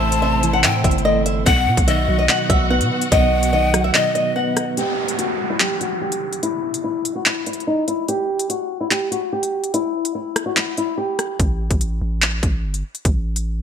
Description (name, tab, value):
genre	hip hop, drill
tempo	145 BPM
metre	4/4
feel	half-time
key	unclear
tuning	A4 = 440 Hz
part	flamenco guitar	melody	0.0-11.4 s	D#4 to F#5	-21 LUFS	left 2 dB	low-pass filter
part	breathy mellow pan flute	second line	0.0-4.7 s	D#5 to A5	-24 LUFS	left 3 dB	ping-pong delay
part	soft electric-piano-like synth keys	accompaniment	0.0-4.8 s	A2 to B3	-23 LUFS	right 4 dB	chorus, tremolo
part	warm symphonic string section	sustained chords	0.0-4.7 s	A3 to F#5	-27 LUFS	left 1 dB	none
part	long sustained 808-style bass	bass	0.0-3.9, 11.4-13.6 s	G1 to B2	-22 LUFS	equal	none
part	drill drum kit	drums	0.1-13.5 s	handclaps, hi-hat, kick drum, rim click	-19 LUFS	equal	none
part	downlifter	sound effects	4.8-8.1 s	none	-28 LUFS	right 1 dB	none
room	moderate lush hall reverb, RT60 1.5 s, small room ambience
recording	bright 1980s-style digital production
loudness	-17 LUFS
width	side -8 dB against mid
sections	0.0-4.8 A section; 4.8-13.6 B section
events	break 3.9-4.8, 4.8-11.4; filter sweep on nylon-string guitar 4.8-13.6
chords	0.0 Am; 1.5 B; 4.8 N.C.